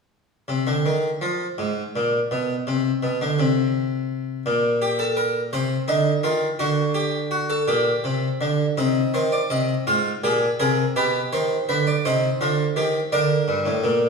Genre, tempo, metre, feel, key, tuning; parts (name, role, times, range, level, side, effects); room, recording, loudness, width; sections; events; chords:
classical, baroque-style 3-part fugue for harpsichord; 56 BPM (dotted quarters); 6/8; straight; C minor; A4 = 444 Hz
harpsichord; solo; 0.5-14.1 s; G2 to F5; -20 LUFS; equal
wet stone room reverb, RT60 1.3 s; heard from further back in the room, studio reverb; -20 LUFS; side -4 dB against mid
0.1-8.8 A section; 8.8-14.1 B section
0.1 N.C.; 4.5 Gm/Bb; 5.5 Cm; 6.6 D; 7.7 Gm/Bb; 8.8 Cm; 9.9 Fm/Ab; 11.0 G/B; 12.1 Cm; 13.1 Gm